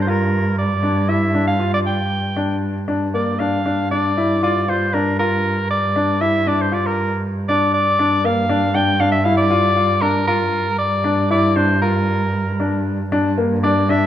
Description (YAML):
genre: contemporary instrumental, chamber music in an uneven meter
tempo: 117 BPM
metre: 5/4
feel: straight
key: G dorian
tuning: A4 = 440 Hz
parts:
  - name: warm soprano saxophone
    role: melody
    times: 0.0-14.1 s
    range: Bb4 to G5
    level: -19 LUFS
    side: equal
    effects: none
  - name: muted cello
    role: bass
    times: 0.0-14.1 s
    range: G2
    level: -21 LUFS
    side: right 2 dB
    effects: none
  - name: clear baby grand piano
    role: arpeggios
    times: 0.1-14.1 s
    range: Bb3 to F4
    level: -20 LUFS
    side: left 3 dB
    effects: none
room: wet recital hall reverb, RT60 1.7 s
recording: none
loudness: -16 LUFS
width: side -11 dB against mid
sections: 0.0-13.1 A section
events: none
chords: 0.0 Gm7; 13.1 G5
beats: | 0.33 0.83 1.34 1.86 2.37 | 2.88 3.40 3.92 4.43 4.94 | 5.45 5.96 6.47 6.98 7.49 | 7.99 8.50 9.01 9.51 10.02 | 10.53 11.05 11.56 12.08 12.60 | 13.12 13.64